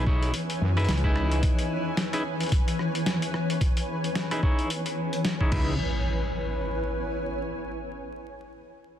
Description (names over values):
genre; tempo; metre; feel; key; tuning
glitch hop; 110 BPM; 4/4; swing 58% on 16ths; C# minor; A4 = 440 Hz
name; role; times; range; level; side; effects
semi-hollow electric guitar; stabs; 0.0-5.7 s; D#4 to C#5; -32 LUFS; equal; sidechain pumping, low-pass filter, tape echo
wobble bass; bass; 0.0-1.4, 5.5-5.8 s; B1 to F#2; -25 LUFS; equal; chorus, overdrive
granular cloud pad; texture; 0.0-7.9 s; E3 to G#5; -30 LUFS; left 1 dB; built-in reverb, sidechain pumping
electronic kick drum; drums; 0.1-5.6 s; none; -24 LUFS; equal; studio reverb
boom bap sampler-style drum kit; drums; 0.2-5.6 s; crash cymbal, hi-hat, rim click, snare drum; -32 LUFS; left 1 dB; studio reverb
impact; sound effects; 5.5-7.7 s; none; -33 LUFS; equal; none
room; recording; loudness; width
light reverb, digital ambience; dense, heavily limited modern master, vinyl crackle; -24 LUFS; side -10 dB against mid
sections
0.0-5.8 A section; 5.8-8.0 B section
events
none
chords
0.0 C#m7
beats
0.34 0.89 | 1.43 1.98 2.52 3.07 | 3.61 4.16 4.70 5.25 | 5.79 6.34 6.88 7.43